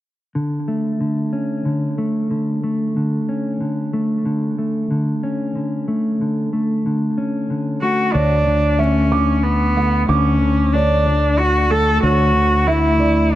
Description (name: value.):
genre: rock.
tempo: 92 BPM.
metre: 3/4.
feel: straight.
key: unclear.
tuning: A4 = 440 Hz.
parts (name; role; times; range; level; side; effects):
mellow electric guitar; arpeggios; 0.4-13.4 s; D3 to C#4; -20 LUFS; equal; analog delay.
clear cello; melody; 7.8-13.3 s; B3 to A4; -17 LUFS; equal; analog delay.
felt-muted upright piano; arpeggios; 8.1-13.4 s; A4 to D6; -24 LUFS; right 6 dB; analog delay.
fingered electric bass; bass; 8.1-13.4 s; D2; -18 LUFS; equal; none.
room: wet recital hall reverb, RT60 1.7 s, studio ambience.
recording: none.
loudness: -16 LUFS.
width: side -14 dB against mid.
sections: 0.4-8.2 A section; 8.2-13.4 B section.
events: none.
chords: 0.4 D5; 8.2 Dmaj7(no3).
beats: | 0.35 1.00 1.66 | 2.31 2.96 3.61 | 4.26 4.91 5.56 | 6.21 6.85 7.50 | 8.15 8.80 9.45 | 10.09 10.74 11.39 | 12.03 12.68 13.33.